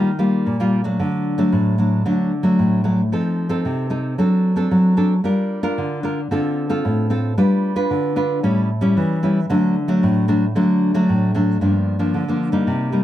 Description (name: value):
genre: samba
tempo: 113 BPM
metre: 4/4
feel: straight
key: G minor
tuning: A4 = 439 Hz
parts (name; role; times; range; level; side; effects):
- nylon-string guitar; solo; 0.0-13.0 s; G2 to B4; -16 LUFS; equal; none
room: moderate studio ambience, RT60 0.5 s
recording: dark, warm production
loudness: -16 LUFS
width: side -12 dB against mid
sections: 0.0-11.6 A section; 11.6-13.0 B section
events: none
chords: 0.0 Ebadd9; 1.0 D; 3.1 F7; 4.2 D7/F#; 5.2 Gm7; 6.3 Dm7; 7.4 G7; 8.4 A7; 9.5 D; 11.6 Gm7